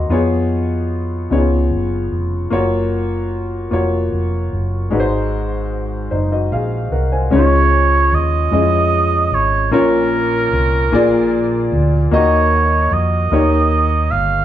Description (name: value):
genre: slow gospel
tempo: 50 BPM (dotted quarters)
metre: 6/8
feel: straight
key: Db major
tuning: A4 = 439 Hz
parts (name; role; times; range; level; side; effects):
- warm upright piano; accompaniment; 0.0-14.4 s; Ab2 to C6; -17 LUFS; left 2 dB; none
- hollow-body short-scale fingered electric bass; bass; 0.0-14.4 s; F1 to F2; -18 LUFS; right 1 dB; none
- mellow oboe; melody; 7.4-14.4 s; Bb4 to F5; -17 LUFS; right 4 dB; none
room: moderate large studio reverb, RT60 0.8 s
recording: band playing live in one room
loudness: -14 LUFS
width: side -11 dB against mid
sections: 0.0-7.3 A section; 7.3-14.4 B section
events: none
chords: 0.1 Db7/F; 1.3 Db7; 2.5 Gbmaj7; 4.9 Ab7; 7.3 Db; 9.7 Bbm; 10.9 Bb7; 12.1 Ebm; 13.3 Eb7